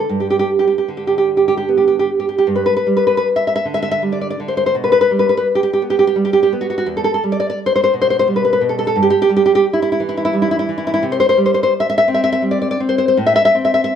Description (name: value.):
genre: romantic piece for solo classical guitar.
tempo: 73-88 BPM.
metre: 3/4.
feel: rubato.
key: G major.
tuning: A4 = 440 Hz.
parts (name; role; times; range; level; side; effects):
nylon-string guitar; solo; 0.0-14.0 s; E2 to E5; -13 LUFS; equal; none.
room: moderate studio reverb, RT60 1.0 s.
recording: band playing live in one room.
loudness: -13 LUFS.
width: side -8 dB against mid.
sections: 0.0-2.5 A section; 2.5-14.0 B section.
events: none.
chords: 0.1 G; 2.5 G5; 4.7 G/B; 6.9 Em (rootless); 9.0 Em/G; 11.0 C5; 13.2 Am.